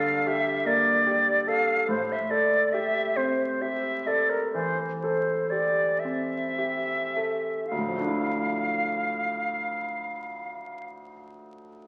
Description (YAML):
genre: classical, impressionist duo for flute and grand piano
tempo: 34-50 BPM (dotted quarters)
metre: 12/8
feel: rubato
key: D minor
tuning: A4 = 440 Hz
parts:
  - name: bright concert flute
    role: melody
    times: 0.0-10.9 s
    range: Bb4 to F5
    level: -28 LUFS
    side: equal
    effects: none
  - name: warm grand piano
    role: accompaniment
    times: 0.0-11.9 s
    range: D2 to A4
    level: -32 LUFS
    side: equal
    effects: none
room: wet recital hall reverb, RT60 1.6 s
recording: very old 78 rpm record, vinyl crackle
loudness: -26 LUFS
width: mono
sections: 0.0-7.7 A section; 7.7-11.9 B section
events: slowing down 0.0-7.7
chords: 0.0 Gmadd9; 1.9 Am7; 7.7 Dmadd9